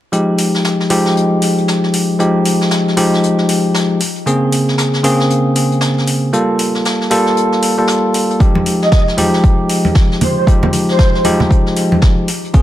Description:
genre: deep house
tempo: 116 BPM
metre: 4/4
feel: swing 60% on 16ths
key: F minor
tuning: A4 = 440 Hz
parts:
  - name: bell-like tine electric piano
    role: stabs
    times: 0.1-12.6 s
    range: Db3 to A4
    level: -13 LUFS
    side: equal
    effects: sidechain pumping, low-pass filter, ping-pong delay
  - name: vintage brush drum kit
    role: drums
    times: 0.1-12.6 s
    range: hi-hat, snare drum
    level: -23 LUFS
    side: left 1 dB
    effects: high-pass filter on hats, high-pass filter on snare, high-pass filter on room
  - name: electronic hi-hat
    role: drums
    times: 0.4-12.4 s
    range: none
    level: -22 LUFS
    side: equal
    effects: overdrive
  - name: electronic kick drum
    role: drums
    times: 8.4-12.6 s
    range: none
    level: -11 LUFS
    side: equal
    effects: overdrive
  - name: congas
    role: percussion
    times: 8.6-12.0 s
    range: none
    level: -18 LUFS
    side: right 1 dB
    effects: none
  - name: breathy flute-like synth lead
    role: melody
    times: 8.8-11.2 s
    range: C5 to Eb5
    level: -19 LUFS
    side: right 2 dB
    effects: ensemble chorus, ping-pong delay
room: light reverb, small room reverb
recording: vinyl crackle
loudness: -11 LUFS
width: side -13 dB against mid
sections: 0.1-12.6 A section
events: none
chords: 0.1 Fm9; 4.0 Bbm9; 6.3 Gm9; 8.4 Fm9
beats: | 0.13 0.64 1.16 1.68 | 2.20 2.71 3.23 3.75 | 4.26 4.78 5.30 5.82 | 6.33 6.85 7.37 7.89 | 8.40 8.92 9.44 9.96 | 10.47 10.99 11.51 12.02 | 12.54

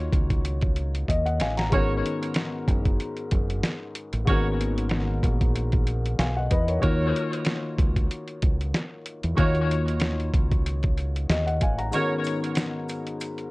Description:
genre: hip hop, boom-bap hip-hop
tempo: 94 BPM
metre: 4/4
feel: swing 55% on 16ths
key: unclear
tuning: A4 = 440 Hz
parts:
  - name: dark baby grand piano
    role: accompaniment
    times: 0.0-13.5 s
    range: Ab2 to Bb5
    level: -29 LUFS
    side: left 2 dB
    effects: cassette tape, high-pass filter, low-pass filter
  - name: deep dub fingered electric bass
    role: bass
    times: 0.0-11.9 s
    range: Gb1 to Fb2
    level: -26 LUFS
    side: equal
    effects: none
  - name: boom bap sampler-style drum kit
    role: drums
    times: 0.1-13.5 s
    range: hi-hat, kick drum, snare drum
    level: -24 LUFS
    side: equal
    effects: none
  - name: clear saxophone section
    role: stabs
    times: 1.7-12.1 s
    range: Gb4 to Db5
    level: -30 LUFS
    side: equal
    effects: high-pass filter, low-pass filter, ping-pong delay
  - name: maracas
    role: percussion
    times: 11.9-13.4 s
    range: none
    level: -47 LUFS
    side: right 2 dB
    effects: none
room: little or no reverb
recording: worn, warbling old tape, cassette tape, warbly pitch drift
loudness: -22 LUFS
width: side -23 dB against mid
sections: 0.0-11.9 A section; 11.9-13.5 A section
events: drum fill 1.1-1.7; break 11.9-13.5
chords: 0.0 Ebm7; 1.7 Abm11; 6.8 Ebm7; 11.9 Abm11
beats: 0.44 1.08 | 1.72 2.36 3.00 3.63 | 4.27 4.91 5.55 6.19 | 6.83 7.46 8.10 8.74 | 9.38 10.02 10.66 11.29 | 11.93 12.57 13.21

